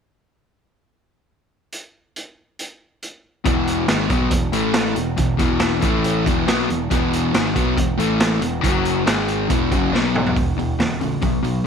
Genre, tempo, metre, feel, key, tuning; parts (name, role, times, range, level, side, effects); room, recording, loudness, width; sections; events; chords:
classic rock; 139 BPM; 4/4; straight; E major; A4 = 440 Hz
raw garage drum kit; drums; 1.7-11.5 s; hi-hat, kick drum, snare drum, toms; -22 LUFS; right 1 dB
overdriven semi-hollow guitar; riff; 3.4-11.7 s; E2 to B3; -21 LUFS; left 11 dB
sludgy distorted guitar; riff; 3.5-11.6 s; E2 to B3; -24 LUFS; right 14 dB; overdrive
growling picked electric bass; bass; 3.5-11.7 s; E1 to B1; -27 LUFS; right 1 dB; overdrive
light reverb, small room reverb; 1960s-style stereo with parts hard left and right; -17 LUFS; side -6 dB against mid
1.7-3.5 A section; 3.5-10.4 B section; 10.4-11.7 C section
drum fill 9.9-10.4
1.7 N.C.; 3.5 E; 4.5 A5; 5.0 E5; 5.8 A5; 6.3 E; 8.0 A5; 8.4 E5; 8.6 F#5; 9.1 G#5; 9.5 E5; 9.9 B5; 10.4 E5